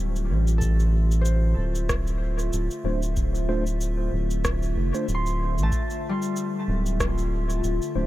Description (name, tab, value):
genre	ambient dub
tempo	94 BPM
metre	4/4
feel	swing 56% on 16ths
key	D minor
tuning	A4 = 440 Hz
part	warbly tape-like pad	sustained chords	0.0-8.1 s	D3 to E5	-32 LUFS	left 2 dB	chorus, built-in reverb, phaser
part	concert harp	arpeggios	0.0-8.1 s	G3 to C6	-32 LUFS	left 1 dB	dub echo
part	round analog bass	bass	0.0-8.1 s	D1 to A1	-23 LUFS	equal	none
part	electronic cabasa and rim click	drums	0.2-7.9 s	none	-34 LUFS	equal	dub echo
part	electronic kick drum	drums	0.6-7.1 s	none	-29 LUFS	equal	none
part	mellow tine electric piano	stabs	2.8-8.1 s	A3 to C5	-33 LUFS	equal	medium stereo tremolo, dub echo
room	digital ambience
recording	none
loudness	-22 LUFS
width	side -15 dB against mid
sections	0.0-8.1 A section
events	fade-in on ambient pad 0.0-8.1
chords	0.0 Dm7